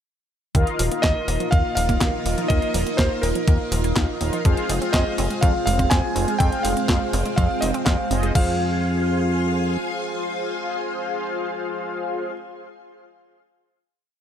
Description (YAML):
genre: italo disco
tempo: 123 BPM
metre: 4/4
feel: straight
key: F minor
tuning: A4 = 444 Hz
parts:
  - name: string machine, full ensemble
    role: sustained chords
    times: 0.5-12.3 s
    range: Ab3 to C6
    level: -28 LUFS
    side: right 1 dB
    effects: phaser, ensemble chorus
  - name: wide unison pluck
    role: arpeggios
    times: 0.5-8.6 s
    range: Eb3 to F4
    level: -31 LUFS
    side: right 4 dB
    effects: tape echo
  - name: mellow synth brass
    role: stabs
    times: 0.5-12.3 s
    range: F4 to F5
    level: -28 LUFS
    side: left 2 dB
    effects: chorus, cassette tape, tape echo
  - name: chorused synth bass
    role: bass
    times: 0.5-9.8 s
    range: Eb1 to F2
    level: -24 LUFS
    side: equal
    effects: tube saturation
  - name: clean 12-bit digital drum machine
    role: drums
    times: 0.5-8.4 s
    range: crash cymbal, handclaps, hi-hat, snare drum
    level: -27 LUFS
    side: equal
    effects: overdrive
  - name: electronic kick drum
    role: drums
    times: 0.5-8.4 s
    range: none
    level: -20 LUFS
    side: equal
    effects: overdrive
  - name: clear electric grand piano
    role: melody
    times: 1.0-12.3 s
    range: Bb4 to Ab5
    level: -26 LUFS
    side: right 1 dB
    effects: tape echo
room: digital ambience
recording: none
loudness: -19 LUFS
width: side -9 dB against mid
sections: 0.5-8.4 chorus; 8.4-12.3 final chord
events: none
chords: 0.5 Ebsus2; 4.5 Fm